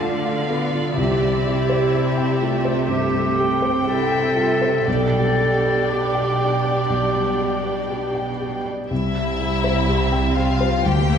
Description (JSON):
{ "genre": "cinematic, emotional film score for orchestra", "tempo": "61 BPM", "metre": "4/4", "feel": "rubato", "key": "C major", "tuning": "A4 = 441 Hz", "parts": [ { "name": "mellow clarinet", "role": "second line", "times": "0.0-8.4 s", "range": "E4 to A4", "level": "-24 LUFS", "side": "left 1 dB", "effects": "none" }, { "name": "warm chamber violin section", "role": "second line", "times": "0.0-11.2 s", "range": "E4 to G5", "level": "-26 LUFS", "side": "left 1 dB", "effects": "none" }, { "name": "felt-muted upright piano", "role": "accompaniment", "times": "0.0-11.2 s", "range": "B1 to G5", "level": "-25 LUFS", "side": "left 2 dB", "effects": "none" }, { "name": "rich symphonic viola section", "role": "accompaniment", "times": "0.0-11.2 s", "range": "F3 to G4", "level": "-26 LUFS", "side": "right 3 dB", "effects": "none" }, { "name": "rich symphonic cello section", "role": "bass", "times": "0.0-11.2 s", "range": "C2 to D3", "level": "-24 LUFS", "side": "right 2 dB", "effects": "none" }, { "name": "warm symphonic violin section", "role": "melody", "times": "8.9-11.2 s", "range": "E5 to G5", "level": "-26 LUFS", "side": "left 3 dB", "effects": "none" }, { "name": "clear symphonic double bass section", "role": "bass", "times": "8.9-11.2 s", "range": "C2 to D2", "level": "-24 LUFS", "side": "right 1 dB", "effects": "none" } ], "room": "wet concert hall reverb, RT60 2.3 s", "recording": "heard from further back in the room", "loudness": "-18 LUFS", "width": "side -7 dB against mid", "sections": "0.0-8.9 A section; 8.9-11.2 A section", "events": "none", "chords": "0.0 Dm; 1.0 C; 4.9 G/B; 8.9 C", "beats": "0.01 | 0.98 1.94 2.89 3.87 | 4.87 5.88 6.89 7.90 | 8.91 9.89 10.86" }